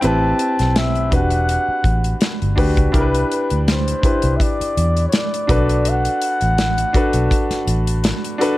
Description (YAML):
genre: lush 1970s-style soul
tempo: 82 BPM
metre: 4/4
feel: swing 54% on 16ths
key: unclear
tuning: A4 = 440 Hz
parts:
  - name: breathy flugelhorn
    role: melody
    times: 0.0-8.1 s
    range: B4 to A5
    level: -22 LUFS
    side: equal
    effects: none
  - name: clear concert grand piano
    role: accompaniment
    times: 0.0-8.6 s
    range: C4 to B4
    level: -21 LUFS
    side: left 1 dB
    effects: none
  - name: vintage muted fingered electric bass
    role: bass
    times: 0.0-8.1 s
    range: E1 to E2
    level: -19 LUFS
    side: equal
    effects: none
  - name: modern studio drum kit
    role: drums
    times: 0.0-8.6 s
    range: hi-hat, kick drum, snare drum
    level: -20 LUFS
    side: equal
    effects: none
room: small room ambience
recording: dark, warm production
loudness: -15 LUFS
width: side -17 dB against mid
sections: 0.0-2.9 A section; 2.9-8.6 B section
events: none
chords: 0.0 Am9; 1.1 Em9; 2.9 Cmaj9; 5.5 Bm7